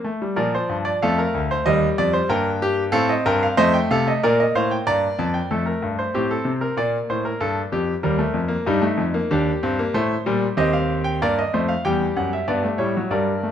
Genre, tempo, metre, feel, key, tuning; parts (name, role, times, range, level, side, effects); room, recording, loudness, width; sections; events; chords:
classical, baroque-style 4-part fugue for grand piano; 94 BPM; 4/4; straight; Bb major; A4 = 440 Hz
bright concert grand piano; solo; 0.0-13.5 s; D2 to Bb5; -19 LUFS; equal
moderate recital hall reverb, RT60 1.6 s; close, detailed microphones; -19 LUFS; side -9 dB against mid
0.4-5.5 A section; 5.5-13.5 B section
0.4 Bb; 1.7 Eb; 3.0 F7; 4.2 Bb; 5.5 Fadd9; 6.8 Bb; 8.0 Eb; 9.3 Cm/Eb; 11.8 A7/E